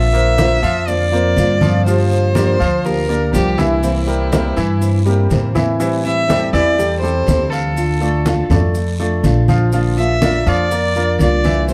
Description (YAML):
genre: latin, Cuban son and guajira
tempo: 122 BPM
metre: 4/4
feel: straight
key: unclear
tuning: A4 = 442 Hz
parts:
  - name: warm violin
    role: melody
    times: 0.0-11.7 s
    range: E4 to E5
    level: -21 LUFS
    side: equal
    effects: none
  - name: nylon-string guitar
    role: accompaniment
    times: 0.0-11.7 s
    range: C3 to G4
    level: -24 LUFS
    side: equal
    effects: none
  - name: bright baby grand piano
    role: arpeggios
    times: 0.0-11.7 s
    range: E3 to F5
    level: -23 LUFS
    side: equal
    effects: none
  - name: upright bass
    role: bass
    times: 0.0-11.7 s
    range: Bb1 to A2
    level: -20 LUFS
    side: equal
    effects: none
  - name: congas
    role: percussion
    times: 0.1-11.7 s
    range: none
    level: -22 LUFS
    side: equal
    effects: none
  - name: maracas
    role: percussion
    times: 0.1-11.7 s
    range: none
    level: -40 LUFS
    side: equal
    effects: none
  - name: guiro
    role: percussion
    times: 0.4-11.7 s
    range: none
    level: -38 LUFS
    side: equal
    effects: none
room: moderate studio reverb, RT60 0.7 s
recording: dark, warm production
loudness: -15 LUFS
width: mono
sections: 0.0-5.8 A section; 5.8-11.7 B section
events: none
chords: 0.0 Bbadd9; 1.9 Gm7; 3.8 C7; 5.8 Am7; 7.8 Dm; 9.7 Bb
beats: 0.38 0.88 1.37 | 1.86 2.35 2.85 3.34 | 3.83 4.32 4.81 5.31 | 5.80 6.29 6.78 7.27 | 7.76 8.26 8.75 9.24 | 9.73 10.22 10.71 11.20 | 11.69